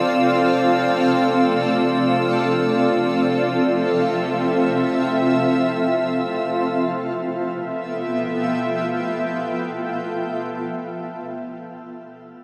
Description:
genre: ambient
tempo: free time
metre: none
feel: none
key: G mixolydian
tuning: A4 = 440 Hz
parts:
  - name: granular cloud pad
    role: sustained chords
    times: 0.0-10.3 s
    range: B3 to G5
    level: -21 LUFS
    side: equal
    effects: built-in reverb, shimmer reverb
  - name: clear chamber violin section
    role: texture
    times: 0.0-6.8 s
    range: E6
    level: -35 LUFS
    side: equal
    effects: shimmer reverb
room: wet spring reverb, RT60 2.3 s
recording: none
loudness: -21 LUFS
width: mono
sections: 0.0-6.8 A section; 6.8-9.5 B section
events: none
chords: 0.0 Dm7; 1.3 Fmaj7; 6.8 G13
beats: free time

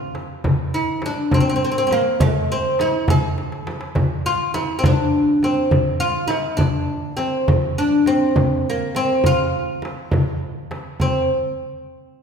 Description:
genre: Arabic maqam ensemble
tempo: 68 BPM (dotted quarters)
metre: 6/8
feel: straight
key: F maqam rast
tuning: A4 = 441 Hz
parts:
  - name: oud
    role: melody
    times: 0.0-11.3 s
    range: Ab3+50c to Ab4+50c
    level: -19 LUFS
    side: equal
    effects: none
  - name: frame drum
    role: percussion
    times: 0.1-11.3 s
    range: none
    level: -23 LUFS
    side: right 2 dB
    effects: none
  - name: darbuka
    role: percussion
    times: 0.2-11.3 s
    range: none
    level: -24 LUFS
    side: left 2 dB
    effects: none
room: wet scoring stage reverb, RT60 1.6 s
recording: recorded in a church or concert hall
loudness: -17 LUFS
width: side -6 dB against mid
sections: 0.0-11.0 A section; 11.0-12.2 B section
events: drum fill 3.4-4.0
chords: none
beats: | 0.45 1.33 | 2.21 3.09 | 3.96 4.84 | 5.72 6.60 | 7.48 8.36 | 9.24 10.12 | 11.00

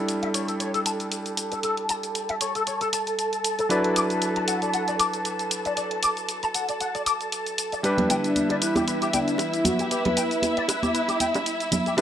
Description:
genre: nu-disco, nu disco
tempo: 116 BPM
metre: 4/4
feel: swing 55% on 16ths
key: unclear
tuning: A4 = 439 Hz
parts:
  - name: clear electric grand piano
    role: accompaniment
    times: 0.0-12.0 s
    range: F#3 to B4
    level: -30 LUFS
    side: equal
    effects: tape echo
  - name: warm studio string section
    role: sustained chords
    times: 0.0-12.0 s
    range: E4 to A5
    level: -28 LUFS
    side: right 1 dB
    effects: low-pass filter
  - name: electronic hi-hat and shaker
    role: drums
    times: 0.1-12.0 s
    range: none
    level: -30 LUFS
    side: equal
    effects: overdrive
  - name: electric guitar with an envelope filter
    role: riff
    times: 0.2-12.0 s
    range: E4 to D6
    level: -28 LUFS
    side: left 3 dB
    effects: ensemble chorus, low-pass filter, tape echo
  - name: bongos and congas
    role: percussion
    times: 7.8-12.0 s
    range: none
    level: -28 LUFS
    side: right 1 dB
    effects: none
  - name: wide unison lead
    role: melody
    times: 8.1-12.0 s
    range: D4 to B4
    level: -28 LUFS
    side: equal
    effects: analog delay
room: light reverb, digital ambience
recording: dry, gritty hardware recording, transformer saturation, cassette tape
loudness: -22 LUFS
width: side -10 dB against mid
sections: 0.0-12.0 A section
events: filter sweep on string section 0.0-12.0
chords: 0.0 A7sus4; 3.7 D69; 7.8 G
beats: 0.08 0.60 1.12 | 1.64 2.15 2.67 3.19 | 3.71 4.22 4.74 5.26 | 5.77 6.29 6.81 7.33 | 7.84 8.36 8.88 9.39 | 9.91 10.43 10.95 11.46 | 11.98

